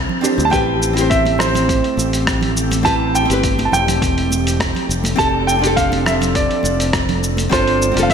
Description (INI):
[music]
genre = sunset chillout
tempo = 103 BPM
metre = 4/4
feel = straight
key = A minor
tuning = A4 = 442 Hz
[part]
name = nylon-string guitar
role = accompaniment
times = 0.0-8.1 s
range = C4 to C5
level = -20 LUFS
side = equal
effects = auto-pan, tape echo, slapback echo
[part]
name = airy breathy pad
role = sustained chords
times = 0.0-8.1 s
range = F3 to A4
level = -24 LUFS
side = right 1 dB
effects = chorus
[part]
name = modern bright fingered electric bass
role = bass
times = 0.0-8.1 s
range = E1 to D2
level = -21 LUFS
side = equal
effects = none
[part]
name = congas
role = percussion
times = 0.1-7.5 s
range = none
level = -28 LUFS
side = right 5 dB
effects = none
[part]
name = dusty soul sampler-style drum kit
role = drums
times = 0.2-8.1 s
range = cabasa, hi-hat, rim click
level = -23 LUFS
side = equal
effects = none
[part]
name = clear grand piano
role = melody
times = 0.5-8.1 s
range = C5 to A5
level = -19 LUFS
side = right 2 dB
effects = tape echo, slapback echo
[part]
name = electronic kick drum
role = drums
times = 0.5-8.1 s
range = none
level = -23 LUFS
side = equal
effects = overdrive
[sound]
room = moderate concert hall reverb, RT60 2.0 s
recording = big arena sound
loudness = -14 LUFS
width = side -7 dB against mid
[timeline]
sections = 0.0-8.1 A section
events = none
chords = 0.0 F6; 0.5 Am9; 4.9 F6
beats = | 0.53 1.11 1.69 2.27 | 2.86 3.44 4.02 4.60 | 5.19 5.77 6.35 6.93 | 7.52 8.10